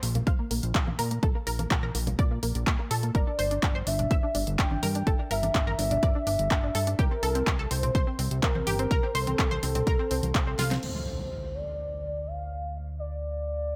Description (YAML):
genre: progressive house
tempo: 125 BPM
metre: 4/4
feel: straight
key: D minor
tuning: A4 = 441 Hz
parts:
  - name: analog pluck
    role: arpeggios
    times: 0.0-10.8 s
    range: Bb3 to F5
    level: -36 LUFS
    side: equal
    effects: ensemble chorus, sidechain pumping, delay
  - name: fat analog bass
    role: bass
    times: 0.0-13.8 s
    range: G1 to Bb2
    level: -34 LUFS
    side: equal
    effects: sidechain pumping
  - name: deep house drum kit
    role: drums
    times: 0.0-10.9 s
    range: crash cymbal, handclaps, hi-hat, snare drum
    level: -35 LUFS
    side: equal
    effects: overdrive
  - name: congas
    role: percussion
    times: 0.2-10.3 s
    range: none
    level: -38 LUFS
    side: equal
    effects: sidechain pumping on perc
  - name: electronic kick drum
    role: drums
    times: 0.3-10.4 s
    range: none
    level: -28 LUFS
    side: equal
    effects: overdrive
  - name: warm velvety synth lead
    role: melody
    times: 3.1-13.8 s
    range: A4 to G5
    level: -34 LUFS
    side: equal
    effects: chorus, dub echo
  - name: impact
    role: sound effects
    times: 10.8-12.7 s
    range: none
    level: -41 LUFS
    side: equal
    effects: none
room: little or no reverb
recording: none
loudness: -28 LUFS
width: mono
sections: 0.0-10.8 A section; 10.8-13.8 B section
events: filter sweep on synth pluck 0.0-10.8; drum fill 10.6; impact 10.8-12.7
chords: 0.0 N.C.; 3.1 G5; 7.0 C5; 10.8 Dm7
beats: 0.27 0.75 | 1.23 1.71 2.19 2.67 | 3.15 3.63 4.11 4.59 | 5.07 5.55 6.03 6.51 | 6.99 7.47 7.95 8.43 | 8.91 9.39 9.87 10.35 | 10.83 11.31 11.79 12.27 | 12.75 13.23 13.71